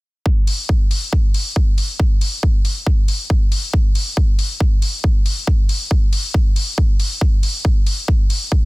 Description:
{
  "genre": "uplifting trance",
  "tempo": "138 BPM",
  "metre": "4/4",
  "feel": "straight",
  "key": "none",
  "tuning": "none",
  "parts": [
    { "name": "electronic kick drum", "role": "drums", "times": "0.3-8.6 s", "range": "none", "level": "-15 LUFS", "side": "equal", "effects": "none" },
    { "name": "electronic hi-hat", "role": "drums", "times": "0.5-8.4 s", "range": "none", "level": "-25 LUFS", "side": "left 2 dB", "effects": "none" }
  ],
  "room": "digital ambience",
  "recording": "dense, heavily limited modern master",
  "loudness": "-15 LUFS",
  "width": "side -22 dB against mid",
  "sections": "0.3-8.7 A section",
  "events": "none",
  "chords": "none",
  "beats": "| 0.26 0.69 1.13 1.56 | 2.00 2.43 2.87 3.30 | 3.73 4.17 4.60 5.04 | 5.47 5.91 6.34 6.78 | 7.21 7.65 8.08 8.52"
}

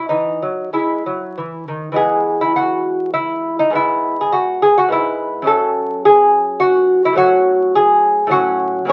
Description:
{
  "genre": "classical, baroque-style dance for lute",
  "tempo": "104 BPM",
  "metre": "3/4",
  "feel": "rubato",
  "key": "E major",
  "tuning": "A4 = 439 Hz",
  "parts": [
    { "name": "lute", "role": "solo", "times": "0.0-8.9 s", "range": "F#2 to C#5", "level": "-16 LUFS", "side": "equal", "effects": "none" }
  ],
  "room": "moderate studio reverb, RT60 0.6 s",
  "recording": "very old 78 rpm record, vinyl crackle",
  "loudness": "-16 LUFS",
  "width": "mono",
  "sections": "0.0-2.0 A section; 2.0-8.9 B section",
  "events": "none",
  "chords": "0.1 E; 3.7 E/G#; 5.5 F#m; 7.2 F#m/A",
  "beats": "| 0.10 0.74 1.37 | 1.98 2.57 3.15 | 3.73 4.31 4.89 | 5.47 6.04 6.62 | 7.19 7.75 8.33 | 8.89"
}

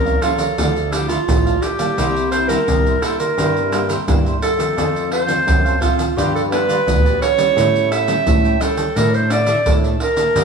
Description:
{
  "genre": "samba and choro",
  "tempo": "86 BPM",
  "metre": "4/4",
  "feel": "straight",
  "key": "unclear",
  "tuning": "A4 = 440 Hz",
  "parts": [
    { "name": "clear clarinet", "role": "melody", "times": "0.0-10.4 s", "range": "F4 to E5", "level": "-18 LUFS", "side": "right 2 dB", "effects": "none" },
    { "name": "nylon-string guitar", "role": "accompaniment", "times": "0.0-10.4 s", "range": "F2 to E4", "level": "-27 LUFS", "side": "left 4 dB", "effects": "none" },
    { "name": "fat analog bass", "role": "bass", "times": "0.0-10.4 s", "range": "A1 to A2", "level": "-21 LUFS", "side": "left 1 dB", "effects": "none" },
    { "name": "cavaquinho", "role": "accompaniment", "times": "0.1-10.4 s", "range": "D4 to Bb5", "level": "-25 LUFS", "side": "right 3 dB", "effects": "none" },
    { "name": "maracas, pandeiro and surdo", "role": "percussion", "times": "0.1-10.4 s", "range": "none", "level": "-20 LUFS", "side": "right 1 dB", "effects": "none" }
  ],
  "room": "wet stone room reverb, RT60 1.1 s",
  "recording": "band playing live in one room",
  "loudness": "-14 LUFS",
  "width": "side -5 dB against mid",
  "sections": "0.0-10.4 A section",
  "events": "none",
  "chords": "0.0 Bbm; 0.6 Dmadd9; 2.0 C7; 4.8 F; 6.2 G7; 7.6 A7; 9.0 Dsus2/A",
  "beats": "0.58 1.28 | 1.98 2.68 3.38 4.08 | 4.77 5.47 6.17 6.87 | 7.57 8.27 8.97 9.67 | 10.36"
}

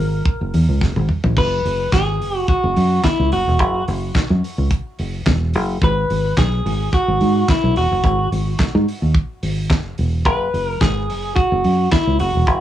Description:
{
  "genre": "disco",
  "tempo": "108 BPM",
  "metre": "4/4",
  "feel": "straight",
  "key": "unclear",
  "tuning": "A4 = 437 Hz",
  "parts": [
    { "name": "clean electric guitar", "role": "melody", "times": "0.0-12.6 s", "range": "E4 to B4", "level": "-20 LUFS", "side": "equal", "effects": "cassette tape, tape echo" },
    { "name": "fingered electric bass", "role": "bass", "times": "0.0-12.6 s", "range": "E1 to G#2", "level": "-18 LUFS", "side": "equal", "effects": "none" },
    { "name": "damped 70s drum kit", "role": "drums", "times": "0.3-12.6 s", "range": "crash cymbal, handclaps, hi-hat, kick drum, snare drum, toms", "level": "-20 LUFS", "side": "equal", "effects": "cassette tape" }
  ],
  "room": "small room ambience",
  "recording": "home recording on cassette",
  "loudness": "-15 LUFS",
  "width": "side -12 dB against mid",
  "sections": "0.0-1.4 A section; 1.4-12.6 B section",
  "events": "drum fill 0.8-1.4",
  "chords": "0.0 F#7; 1.4 N.C.; 5.8 G#7(no3); 10.3 F#sus4",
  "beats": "0.26 0.81 | 1.37 1.93 2.48 3.04 | 3.59 4.15 4.71 5.26 | 5.82 6.37 6.93 7.48 | 8.04 8.59 9.15 9.70 | 10.26 10.81 11.36 11.92 | 12.47"
}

